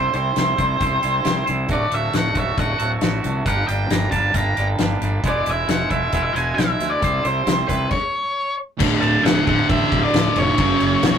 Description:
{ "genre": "quiet-loud alternative rock", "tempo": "135 BPM", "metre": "4/4", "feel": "straight", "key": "unclear", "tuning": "A4 = 444 Hz", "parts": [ { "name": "octave-fuzz lead guitar", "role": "melody", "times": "0.0-11.2 s", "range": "B4 to Bb5", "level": "-22 LUFS", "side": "equal", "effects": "distortion" }, { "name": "twangy electric guitar", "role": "arpeggios", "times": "0.0-7.9 s", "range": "D2 to C5", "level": "-24 LUFS", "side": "right 3 dB", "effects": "none" }, { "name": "fuzz fingered electric bass", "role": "bass", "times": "0.0-11.2 s", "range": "D1 to D2", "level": "-24 LUFS", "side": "equal", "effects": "overdrive" }, { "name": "loose indie drum kit", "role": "drums", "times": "0.1-11.1 s", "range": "crash cymbal, hi-hat, kick drum, snare drum", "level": "-23 LUFS", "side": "left 1 dB", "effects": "none" }, { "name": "crunchy overdriven guitar", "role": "riff", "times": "8.8-11.2 s", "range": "D2 to F#3", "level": "-22 LUFS", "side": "right 5 dB", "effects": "none" }, { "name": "scooped high-gain guitar", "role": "riff", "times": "8.8-11.2 s", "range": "D2 to F#3", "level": "-22 LUFS", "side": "left 5 dB", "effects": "distortion" } ], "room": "moderate booth ambience, RT60 0.2 s", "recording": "rough rehearsal-room recording, tube saturation", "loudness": "-17 LUFS", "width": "side -8 dB against mid", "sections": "0.0-8.8 A section; 8.8-11.2 B section", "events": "stop 7.9-8.8", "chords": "0.0 C; 1.7 D; 3.5 Gm; 5.2 E; 7.0 C; 7.9 N.C.; 8.8 D5; 10.6 F#5", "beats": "0.36 0.80 1.25 | 1.69 2.14 2.58 3.02 | 3.47 3.91 4.36 4.80 | 5.25 5.69 6.13 6.58 | 7.02 7.47 7.91 8.36 | 8.80 9.25 9.69 10.14 | 10.58 11.03" }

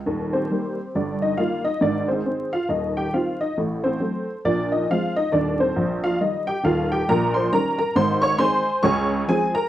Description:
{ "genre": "jazz, stride piano", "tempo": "137 BPM", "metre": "4/4", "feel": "swing 61% on 8ths", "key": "Eb major", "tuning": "A4 = 439 Hz", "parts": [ { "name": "honky-tonk upright piano", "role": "solo", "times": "0.1-9.7 s", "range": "Eb1 to Db6", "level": "-20 LUFS", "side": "equal", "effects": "none" } ], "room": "moderate studio reverb, RT60 0.7 s", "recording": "dark, warm production, vinyl crackle", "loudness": "-20 LUFS", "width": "side -12 dB against mid", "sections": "0.1-9.7 A section", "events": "none", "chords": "0.1 Eb; 0.9 Eb/G; 1.8 Ab; 3.6 Am6; 4.5 Bb9; 5.3 Eb; 7.1 Eb7/Bb; 8.0 Ab; 8.8 Dbmaj7", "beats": "| 0.07 0.51 0.95 1.39 | 1.83 2.26 2.70 3.14 | 3.58 4.02 4.45 4.89 | 5.33 5.77 6.21 6.65 | 7.08 7.52 7.96 8.40 | 8.84 9.28" }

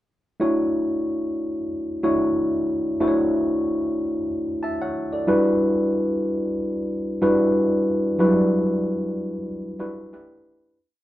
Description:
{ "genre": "soul", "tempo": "93 BPM", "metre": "4/4", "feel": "swing 54% on 16ths", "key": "D major", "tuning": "A4 = 439 Hz", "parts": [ { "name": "tine electric piano", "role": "solo", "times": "0.4-10.8 s", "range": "F#3 to A5", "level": "-20 LUFS", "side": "equal", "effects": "tube saturation" } ], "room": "wet stone room reverb, RT60 0.9 s", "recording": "band playing live in one room", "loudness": "-20 LUFS", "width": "side -14 dB against mid", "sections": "0.4-10.8 verse", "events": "fade-out 8.2-10.8", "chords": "0.4 Dmaj7; 5.3 Em7; 10.1 A9sus4", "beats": "| 0.41 1.06 1.71 2.35 | 3.00 3.65 4.30 4.94 | 5.59 6.24 6.89 7.54 | 8.18 8.83 9.48 10.12" }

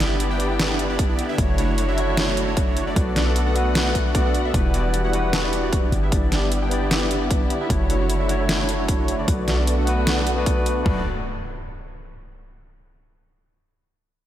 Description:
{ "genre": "future bass", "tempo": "152 BPM", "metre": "4/4", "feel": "swing 53% on 16ths, half-time", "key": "B minor", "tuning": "A4 = 440 Hz", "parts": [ { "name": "barky tine electric piano", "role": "accompaniment", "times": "0.0-11.0 s", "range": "G3 to D5", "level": "-27 LUFS", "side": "left 2 dB", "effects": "overdrive, vintage 12-bit sampler grit, sidechain pumping, diffuse ambient delay" }, { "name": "warm symphonic string section", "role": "sustained chords", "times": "0.0-11.0 s", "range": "D3 to F#5", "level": "-31 LUFS", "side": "equal", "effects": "sidechain pumping, low-pass filter" }, { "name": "big bright polysynth", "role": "riff", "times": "0.0-11.0 s", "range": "A3 to G5", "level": "-26 LUFS", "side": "right 1 dB", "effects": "sidechain pumping, diffuse ambient delay" }, { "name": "warm 808-style bass", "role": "bass", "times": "0.0-11.0 s", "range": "E1 to B1", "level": "-24 LUFS", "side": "equal", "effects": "sidechain pumping" }, { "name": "dubstep drum kit", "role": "drums", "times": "0.0-10.7 s", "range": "hi-hat, snare drum", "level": "-26 LUFS", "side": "equal", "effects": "overdrive" }, { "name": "downlifter and impact", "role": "sound effects", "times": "0.0-1.4, 10.9-12.4 s", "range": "none", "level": "-35 LUFS", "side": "equal", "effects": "none" }, { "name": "electronic kick drum", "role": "drums", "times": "1.0-10.9 s", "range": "none", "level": "-22 LUFS", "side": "equal", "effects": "overdrive" } ], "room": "moderate lush hall reverb, RT60 2.1 s", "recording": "dreamy mix soaked in reverb", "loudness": "-19 LUFS", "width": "side -12 dB against mid", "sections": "0.0-10.9 A section; 10.9-12.4 B section", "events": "filter sweep on analog polysynth 0.0-10.9", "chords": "0.0 G6; 1.4 Dmaj9/F#; 3.0 Bm7; 4.5 Em9; 5.9 G6; 7.7 Dmaj9/F#; 9.3 Bm7", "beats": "0.20 0.59 0.99 | 1.39 1.78 2.17 2.57 | 2.96 3.36 3.75 4.15 | 4.54 4.94 5.33 5.73 | 6.12 6.52 6.91 7.31 | 7.70 8.10 8.49 8.88 | 9.28 9.67 10.07 10.46 | 10.86 11.25 11.65 12.04" }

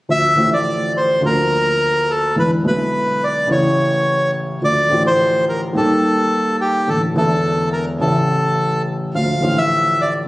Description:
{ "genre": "tango", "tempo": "106 BPM", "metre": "4/4", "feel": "rubato", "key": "D minor", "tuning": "A4 = 440 Hz", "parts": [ { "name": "bandoneon", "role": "melody", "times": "0.1-10.1 s", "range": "G4 to F5", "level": "-16 LUFS", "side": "equal", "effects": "none" }, { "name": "dark concert grand piano", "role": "accompaniment", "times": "0.1-10.3 s", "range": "E1 to G4", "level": "-18 LUFS", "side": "equal", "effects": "none" } ], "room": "moderate scoring stage reverb, RT60 1.6 s", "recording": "recorded on a phone in the room, club reverb, compression", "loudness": "-14 LUFS", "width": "side -19 dB against mid", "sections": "0.1-10.3 A section", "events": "none", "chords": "0.1 Dm; 1.2 Bb/D; 2.4 E7; 3.5 A; 4.6 Dm; 5.8 Eb; 6.9 Asus4; 8.0 A; 9.1 Dm", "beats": "| 0.09 0.66 1.23 1.80 | 2.36 2.93 3.49 4.06 | 4.62 5.19 5.75 6.32 | 6.88 7.45 8.01 8.58 | 9.15 9.71 10.28" }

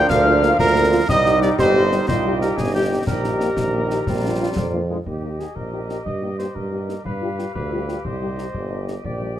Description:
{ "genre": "military-style march for wind band", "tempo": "121 BPM (dotted quarters)", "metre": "6/8", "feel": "straight", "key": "Eb major", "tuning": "A4 = 436 Hz", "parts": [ { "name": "mellow cornet", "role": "melody", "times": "0.0-9.4 s", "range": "G4 to F5", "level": "-25 LUFS", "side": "right 1 dB", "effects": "none" }, { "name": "mellow wooden piccolo", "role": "second line", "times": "0.0-4.9 s", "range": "G5 to G6", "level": "-26 LUFS", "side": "left 4 dB", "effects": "none" }, { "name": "warm euphonium", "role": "second line", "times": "0.0-4.8 s", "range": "D4 to G4", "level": "-24 LUFS", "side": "right 3 dB", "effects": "none" }, { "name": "warm woodwind section", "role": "second line", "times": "0.0-9.4 s", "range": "F4 to F5", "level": "-28 LUFS", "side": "left 2 dB", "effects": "none" }, { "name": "bright trombone section", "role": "sustained chords", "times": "0.0-5.0 s", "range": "Eb3 to Eb4", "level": "-27 LUFS", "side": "equal", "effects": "none" }, { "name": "clear tuba", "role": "bass", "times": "0.1-9.4 s", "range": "G1 to G2", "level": "-24 LUFS", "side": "right 2 dB", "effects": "none" }, { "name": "concert snare drum, concert bass drum and clash cymbals", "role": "drums", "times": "0.1-9.2 s", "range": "none", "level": "-28 LUFS", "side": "left 1 dB", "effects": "none" }, { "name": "dark French horn section", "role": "accompaniment", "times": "0.3-9.4 s", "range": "G3 to G4", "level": "-27 LUFS", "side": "left 2 dB", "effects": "none" } ], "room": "light reverb", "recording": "none", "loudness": "-18 LUFS", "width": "side -11 dB against mid", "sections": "0.0-5.1 A section; 5.1-9.4 B section", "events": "none", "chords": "0.0 Bb/D; 1.1 Cm; 3.1 Eb/Bb; 4.1 Bb; 5.1 Eb; 6.1 Eb/G; 7.1 G7; 8.0 Cm", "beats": "| 0.10 0.59 | 1.09 1.59 | 2.08 2.58 | 3.08 3.57 | 4.07 4.57 | 5.06 5.56 | 6.06 6.55 | 7.05 7.55 | 8.05 8.54 | 9.04" }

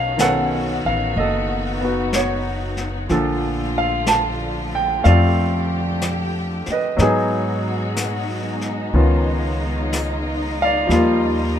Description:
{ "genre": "jazz ballad", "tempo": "62 BPM", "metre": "4/4", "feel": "swing 68% on 8ths", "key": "unclear", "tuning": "A4 = 440 Hz", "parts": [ { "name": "bright concert grand piano", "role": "accompaniment", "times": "0.0-11.6 s", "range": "Bb2 to A5", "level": "-20 LUFS", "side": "right 1 dB", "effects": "none" }, { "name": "clear studio string section", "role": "sustained chords", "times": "0.0-11.6 s", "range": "D3 to G4", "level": "-26 LUFS", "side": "left 2 dB", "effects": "none" }, { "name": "upright bass", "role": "bass", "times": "0.0-11.6 s", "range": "F#1 to Ab2", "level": "-22 LUFS", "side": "equal", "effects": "none" }, { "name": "jazz brush drum kit", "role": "drums", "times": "0.2-11.6 s", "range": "brushed snare drum, hi-hat, snare drum", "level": "-29 LUFS", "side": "left 3 dB", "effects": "none" } ], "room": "light reverb", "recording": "minimal, uncompressed stereo recording", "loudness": "-17 LUFS", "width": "side -9 dB against mid", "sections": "0.0-11.6 A section", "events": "none", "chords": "0.0 B9; 3.1 Bbmaj7; 7.0 Abm7; 8.9 C#9; 10.9 Ebmaj9", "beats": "0.18 1.16 2.13 | 3.10 4.07 5.04 6.01 | 6.99 7.96 8.93 9.91 | 10.90" }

